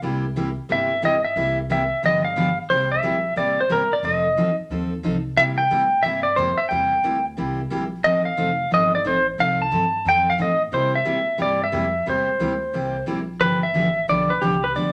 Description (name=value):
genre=country, western swing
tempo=179 BPM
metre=4/4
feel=swing 64% on 8ths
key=C mixolydian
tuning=A4 = 443 Hz
part: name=picked steel-string acoustic guitar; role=accompaniment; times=0.0-14.9 s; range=C3 to A4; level=-28 LUFS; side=equal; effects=none
part: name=upright bass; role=bass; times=0.0-14.9 s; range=F1 to C3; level=-33 LUFS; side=equal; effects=none
part: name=pedal steel guitar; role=melody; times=0.7-14.9 s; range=G4 to A5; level=-22 LUFS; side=equal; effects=none
room=wet studio reverb, RT60 0.6 s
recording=none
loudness=-21 LUFS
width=mono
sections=0.0-2.7 A section; 2.7-14.9 B section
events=pedal steel guitar solo 0.0-2.7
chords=0.0 C7; 2.0 G7; 2.7 C7; 4.0 F7; 5.4 C7; 8.0 F7; 10.7 C7; 13.4 G7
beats=| 0.03 0.36 0.70 1.03 | 1.36 1.70 2.03 2.36 | 2.70 3.03 3.37 3.70 | 4.03 4.37 4.70 5.04 | 5.37 5.71 6.04 6.37 | 6.71 7.04 7.38 7.71 | 8.05 8.38 8.72 9.05 | 9.39 9.72 10.06 10.39 | 10.72 11.06 11.39 11.73 | 12.07 12.40 12.74 13.07 | 13.41 13.75 14.08 14.42 | 14.76